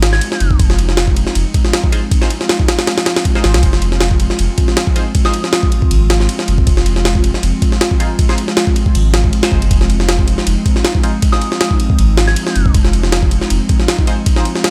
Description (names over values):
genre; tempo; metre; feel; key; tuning
drum and bass, jungle; 158 BPM; 4/4; swing 54% on 16ths; F minor; A4 = 441 Hz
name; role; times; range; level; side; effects
airy breathy pad; sustained chords; 0.0-14.7 s; F3 to F4; -24 LUFS; equal; chorus
soft dub sub bass; bass; 0.0-13.6 s; F1 to C2; -17 LUFS; equal; tube saturation
jungle sampler-style drum kit; drums; 0.0-14.7 s; kick drum, ride cymbal, snare drum; -16 LUFS; equal; none
soft synth bell; melody; 0.1-0.5, 5.3-5.5, 11.3-12.7 s; Eb6 to Ab6; -26 LUFS; equal; chorus, dub echo
band-passed chord stab; stabs; 1.9-5.3, 8.0-11.4, 14.1-14.4 s; Eb4 to C5; -30 LUFS; equal; phaser, subtle chorus, dub echo
room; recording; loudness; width
digital ambience; none; -14 LUFS; mono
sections
0.0-14.7 A section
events
none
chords
0.0 Fm7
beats
0.21 | 0.59 0.97 1.35 1.73 | 2.11 2.49 2.87 3.25 | 3.63 4.01 4.39 4.77 | 5.15 5.53 5.91 6.29 | 6.67 7.05 7.43 7.81 | 8.19 8.57 8.95 9.33 | 9.71 10.09 10.47 10.85 | 11.23 11.61 11.98 12.37 | 12.74 13.12 13.50 13.88 | 14.26 14.64